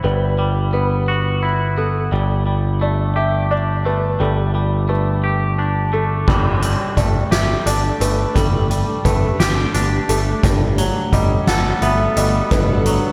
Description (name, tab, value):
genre	post-rock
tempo	58 BPM (dotted quarters)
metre	6/8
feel	straight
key	G major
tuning	A4 = 440 Hz
part	felt-muted upright piano	arpeggios	0.0-13.1 s	A4 to F#5	-27 LUFS	equal	slapback echo
part	twangy electric guitar	arpeggios	0.0-13.1 s	G2 to A4	-24 LUFS	equal	slapback echo
part	growling picked electric bass	bass	0.0-13.0 s	G1	-21 LUFS	equal	overdrive
part	granular cloud pad	sustained chords	7.4-13.1 s	A3 to F#5	-28 LUFS	equal	built-in reverb
part	soft-mallet drum kit	drums	6.3-13.0 s	crash cymbal, hi-hat, kick drum, snare drum	-22 LUFS	equal	none
room	moderate lush hall reverb, RT60 2.9 s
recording	big arena sound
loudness	-18 LUFS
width	mono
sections	0.0-6.3 A section; 6.3-13.1 B section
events	none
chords	0.0 Emadd9/G; 2.1 Gsus2; 10.4 B7/G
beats	| 0.04 1.08 | 2.12 3.16 | 4.20 5.24 | 6.28 7.32 | 8.36 9.40 | 10.44 11.48 | 12.52